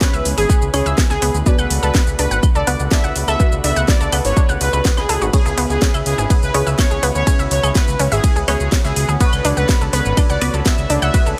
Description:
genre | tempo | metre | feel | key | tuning
melodic techno | 124 BPM | 4/4 | straight | C# phrygian | A4 = 439 Hz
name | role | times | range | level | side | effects
analog synth brass | melody | 0.0-11.3 s | G#4 to E5 | -25 LUFS | equal | chorus, sidechain pumping, digital delay
lush unison pad | sustained chords | 0.0-11.4 s | B2 to B4 | -30 LUFS | equal | chorus, sidechain pumping
analog pluck | arpeggios | 0.0-11.4 s | B3 to F#5 | -26 LUFS | equal | chorus, sidechain pumping, dub echo
filtered dub chord stab | stabs | 0.0-11.4 s | B3 to C#5 | -28 LUFS | equal | phaser, analog chorus, sidechain pumping, dub echo
electronic kick drum | drums | 0.0-11.2 s | none | -18 LUFS | equal | none
house drum kit | drums | 0.0-11.4 s | claves, hi-hat, ride cymbal, shaker, snare drum | -25 LUFS | equal | none
fat analog bass | bass | 0.1-11.3 s | G#1 to D2 | -22 LUFS | equal | sidechain pumping
room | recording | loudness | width
light reverb | none | -16 LUFS | mono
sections
0.0-11.4 A section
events
none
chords
0.0 C#m7; 1.5 Bm7; 5.3 C#m7; 9.2 Bm7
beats
0.01 0.49 0.98 | 1.46 1.95 2.43 2.91 | 3.40 3.88 4.37 4.85 | 5.33 5.82 6.30 6.79 | 7.27 7.75 8.24 8.72 | 9.21 9.69 10.17 10.66 | 11.14

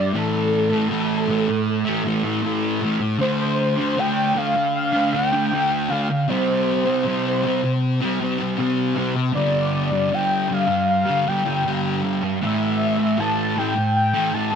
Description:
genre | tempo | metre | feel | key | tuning
rock | 78 BPM | 4/4 | straight | unclear | A4 = 440 Hz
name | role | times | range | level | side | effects
warm velvety synth lead | melody | 0.0-14.6 s | A4 to A5 | -23 LUFS | equal | chorus, tape echo
fuzz guitar | riff | 0.0-14.6 s | G2 to D4 | -20 LUFS | equal | distortion, wide subtle chorus
room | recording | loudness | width
light reverb, digital ambience | none | -18 LUFS | side -7 dB against mid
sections
0.0-14.6 A section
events
none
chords
0.1 A5; 3.2 D5; 6.3 C5; 9.3 G5; 12.4 A5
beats
| 0.14 0.90 1.67 2.44 | 3.21 3.97 4.74 5.51 | 6.28 7.04 7.81 8.58 | 9.35 10.12 10.88 11.65 | 12.42 13.19 13.95

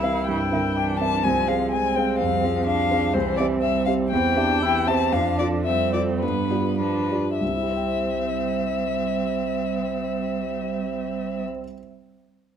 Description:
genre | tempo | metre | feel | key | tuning
quick classical-period movement for piano quartet | 96-128 BPM | 4/4 | straight | C major | A4 = 440 Hz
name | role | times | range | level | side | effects
rich violin | melody | 0.0-11.4 s | B4 to A5 | -25 LUFS | left 7 dB | none
clear cello | second line | 0.0-11.4 s | D3 to Ab3 | -31 LUFS | right 9 dB | none
rich viola | accompaniment | 0.0-11.4 s | B3 to E4 | -28 LUFS | right 4 dB | none
warm concert grand piano | accompaniment | 0.0-11.8 s | C2 to G5 | -25 LUFS | right 1 dB | none
room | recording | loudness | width
moderate recital hall reverb, RT60 1.4 s | close, detailed microphones | -21 LUFS | side -8 dB against mid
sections
0.0-7.4 A section; 7.4-12.2 B section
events
slowing down 2.2-7.4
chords
0.0 C7; 1.2 Fm/C; 3.1 C; 4.1 C/E; 5.1 Dm/F; 6.2 G7; 7.4 C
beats
0.29 0.77 | 1.25 1.72 2.20 2.67 | 3.15 3.63 4.12 4.62 | 5.13 5.67 6.22 6.80 | 7.41 8.01 8.61 9.21 | 9.82 10.42 11.02 11.62

